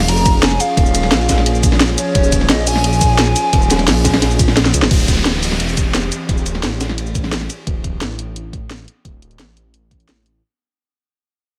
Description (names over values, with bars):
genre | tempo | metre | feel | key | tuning
liquid drum and bass | 174 BPM | 4/4 | straight | unclear | A4 = 444 Hz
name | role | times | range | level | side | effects
hollow clarinet-like synth lead | melody | 0.0-4.6 s | Db5 to Bb5 | -22 LUFS | equal | chorus, cassette tape, tape echo
warm analog pad | sustained chords | 0.0-10.4 s | E3 to Ab4 | -27 LUFS | equal | chorus, sidechain pumping
dark detuned saw bass | bass | 0.0-10.4 s | D1 to Db2 | -21 LUFS | equal | none
crunchy breakbeat drum kit | drums | 0.0-7.6 s | hi-hat, ride cymbal, snare drum | -24 LUFS | equal | high-pass filter on cymbals, high-pass filter on hats, high-pass filter on snare, high-pass filter on room
drum and bass drum kit | drums | 0.0-10.3 s | hi-hat, ride cymbal, shaker, snare drum | -21 LUFS | equal | none
electronic kick drum | drums | 0.3-10.0 s | none | -19 LUFS | equal | none
downlifter | sound effects | 4.9-7.7 s | none | -27 LUFS | equal | none
room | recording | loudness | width
light reverb, small room ambience | none | -15 LUFS | mono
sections
0.0-4.9 A section; 4.9-10.4 B section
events
drop 0.0-4.9; drum fill 4.6-4.9; fade-out 4.9-10.4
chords
0.0 Eb9sus4; 4.9 D9sus4